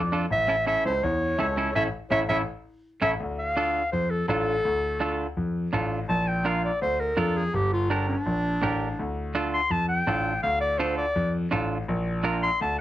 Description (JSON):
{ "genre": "latin", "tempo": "166 BPM", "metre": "4/4", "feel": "straight", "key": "D minor", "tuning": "A4 = 436 Hz", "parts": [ { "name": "mellow accordion", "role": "second line", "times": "0.0-3.1 s", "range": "E4 to E5", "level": "-30 LUFS", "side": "left 3 dB", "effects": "none" }, { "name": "warm concert grand piano", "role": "bass", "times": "0.0-12.8 s", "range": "G1 to F2", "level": "-28 LUFS", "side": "left 1 dB", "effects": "none" }, { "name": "semi-hollow electric guitar", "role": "accompaniment", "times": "0.1-12.5 s", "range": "C#4 to Bb4", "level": "-28 LUFS", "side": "right 4 dB", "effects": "none" }, { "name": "clear clarinet", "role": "melody", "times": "0.3-12.8 s", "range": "D4 to C6", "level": "-26 LUFS", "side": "equal", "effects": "none" } ], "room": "light reverb", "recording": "none", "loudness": "-23 LUFS", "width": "side -14 dB against mid", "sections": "0.0-3.2 A section; 3.2-12.8 B section", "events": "band accent 1.8-3.2; clarinet solo 3.2-12.8", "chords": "0.3 A; 3.2 Dm; 6.1 Bb; 7.5 Gm; 9.0 Dm; 11.9 Bb" }